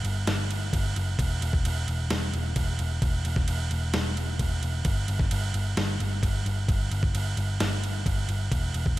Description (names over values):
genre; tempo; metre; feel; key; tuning
rock, shoegaze and dream pop; 131 BPM; 4/4; straight; unclear; A4 = 440 Hz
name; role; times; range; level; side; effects
vintage muted picked electric bass; bass; 0.0-9.0 s; E1 to G1; -27 LUFS; equal; none
detuned 8-bit digital drum machine; drums; 0.0-9.0 s; crash cymbal, kick drum, snare drum; -28 LUFS; equal; none
room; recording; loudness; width
light reverb; none; -25 LUFS; side -17 dB against mid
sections
0.0-9.0 A section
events
none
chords
none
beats
0.27 0.73 | 1.19 1.65 2.10 2.56 | 3.02 3.48 3.94 4.39 | 4.85 5.31 5.77 6.23 | 6.69 7.14 7.60 8.06 | 8.52 8.97